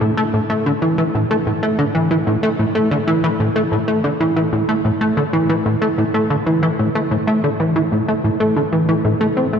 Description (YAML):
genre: ambient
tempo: 93 BPM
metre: 4/4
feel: straight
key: unclear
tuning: A4 = 439 Hz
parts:
  - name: plucky analog bass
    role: solo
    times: 0.0-9.6 s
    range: A2 to C4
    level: -15 LUFS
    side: equal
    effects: lush chorus, ping-pong delay
room: wet cathedral reverb, RT60 5.9 s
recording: dreamy mix soaked in reverb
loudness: -15 LUFS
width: side -7 dB against mid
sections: 0.0-9.6 A section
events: none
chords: none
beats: | 0.01 0.66 1.30 1.95 | 2.59 3.24 3.88 4.53 | 5.17 5.82 6.46 7.11 | 7.75 8.40 9.05